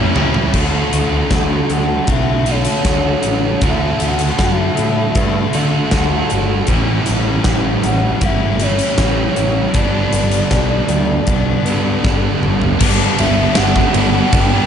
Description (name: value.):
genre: rock, shoegaze and dream pop.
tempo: 78 BPM.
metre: 4/4.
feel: straight.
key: D major.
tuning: A4 = 442 Hz.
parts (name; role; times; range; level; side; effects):
pure breathy sine lead; melody; 0.0-14.7 s; C#5 to G5; -22 LUFS; equal; chorus, tape echo.
mellow electric guitar; arpeggios; 0.0-14.7 s; E3 to G4; -27 LUFS; equal; none.
overdriven electric guitar; riff; 0.0-14.7 s; G2 to F#4; -21 LUFS; left 11 dB; lush chorus.
overdriven electric guitar; riff; 0.0-14.7 s; G2 to G4; -20 LUFS; right 9 dB; reverse reverb.
overdriven electric guitar; riff; 0.0-0.5, 12.8-14.7 s; G2 to E4; -22 LUFS; right 1 dB; none.
growling picked electric bass; bass; 0.0-14.6 s; G1 to D3; -19 LUFS; equal; overdrive.
huge arena drum kit; drums; 0.2-14.5 s; crash cymbal, hi-hat, kick drum, ride cymbal, snare drum, toms; -19 LUFS; equal; none.
room: light reverb, small room ambience.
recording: nothing above 10.6 kHz.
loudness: -13 LUFS.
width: side -8 dB against mid.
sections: 0.5-12.8 A section; 12.8-14.7 B section.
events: drum fill 0.0-0.5, 12.1-12.8.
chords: 0.0 A7; 0.5 Dmaj9; 6.7 A7; 9.8 G6; 12.8 Gmaj7.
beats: | 0.55 1.32 2.09 2.86 | 3.63 4.39 5.16 5.93 | 6.70 7.47 8.23 9.00 | 9.76 10.53 11.29 12.05 | 12.81 13.57 14.33.